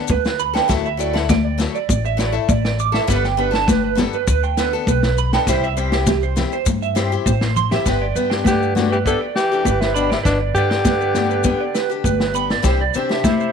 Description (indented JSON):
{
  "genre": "highlife guitar band",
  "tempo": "100 BPM",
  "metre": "4/4",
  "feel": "straight",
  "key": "G major",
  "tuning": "A4 = 442 Hz",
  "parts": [
    { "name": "picked acoustic archtop guitar", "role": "accompaniment", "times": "0.0-13.3 s", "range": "E3 to A4", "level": "-25 LUFS", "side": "left 13 dB", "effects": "none" },
    { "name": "electric guitar through a small old amp", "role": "arpeggios", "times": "0.1-13.5 s", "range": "G4 to D6", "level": "-22 LUFS", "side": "right 13 dB", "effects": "wide subtle chorus, tape echo" },
    { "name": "upright bass", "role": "bass", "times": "0.1-13.5 s", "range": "G1 to C3", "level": "-22 LUFS", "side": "left 1 dB", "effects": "none" },
    { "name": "vintage drum kit", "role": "drums", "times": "0.1-13.4 s", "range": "kick drum, snare drum", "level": "-23 LUFS", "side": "equal", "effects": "none" },
    { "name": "congas", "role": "percussion", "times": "0.1-13.4 s", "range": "none", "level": "-21 LUFS", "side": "left 3 dB", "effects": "none" },
    { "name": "maracas", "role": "percussion", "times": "0.1-13.5 s", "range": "none", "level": "-31 LUFS", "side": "left 19 dB", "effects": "none" },
    { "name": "breathy alto saxophone", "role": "melody", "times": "8.5-13.5 s", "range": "D4 to A4", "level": "-21 LUFS", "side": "equal", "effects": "tape echo" },
    { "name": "raspy tenor saxophone", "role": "second line", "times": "8.5-13.5 s", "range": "B2 to E3", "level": "-25 LUFS", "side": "left 14 dB", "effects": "none" }
  ],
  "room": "light reverb, small room ambience",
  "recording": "1960s-style stereo with parts hard left and right",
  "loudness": "-16 LUFS",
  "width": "side -6 dB against mid",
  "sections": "0.0-7.9 A section; 7.9-13.5 B section",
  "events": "drum fill 7.4-7.9",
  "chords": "0.0 Gadd9; 0.7 Dadd9; 3.1 Gadd9; 5.5 C; 7.9 G; 12.6 Cadd9"
}